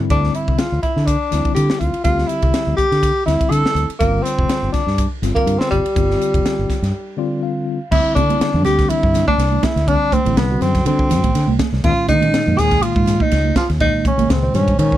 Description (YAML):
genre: electric jazz fusion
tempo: 122 BPM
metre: 4/4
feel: swing 55% on 16ths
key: unclear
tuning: A4 = 438 Hz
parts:
  - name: tine electric piano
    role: accompaniment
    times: 0.0-15.0 s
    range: Bb2 to F5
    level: -22 LUFS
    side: left 2 dB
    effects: medium stereo tremolo
  - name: fretless electric bass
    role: bass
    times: 0.0-15.0 s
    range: F1 to Eb3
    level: -18 LUFS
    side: equal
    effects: none
  - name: crisp fusion drum kit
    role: drums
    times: 0.0-15.0 s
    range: crash cymbal, hi-hat, kick drum, ride cymbal, snare drum, toms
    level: -21 LUFS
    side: equal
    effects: none
  - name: mellow tenor saxophone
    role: melody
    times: 0.1-15.0 s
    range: G3 to A4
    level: -19 LUFS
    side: equal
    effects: none
  - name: congas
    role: percussion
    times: 8.2-14.9 s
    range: none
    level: -24 LUFS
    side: right 10 dB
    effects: none
room: little or no reverb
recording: none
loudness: -14 LUFS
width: side -13 dB against mid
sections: 0.0-7.9 A section; 7.9-15.0 B section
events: break 6.9-7.9; tine electric piano fill 6.9-7.9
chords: 0.0 D9sus4; 4.0 G7sus4; 7.9 D9sus4; 11.8 Eb7sus4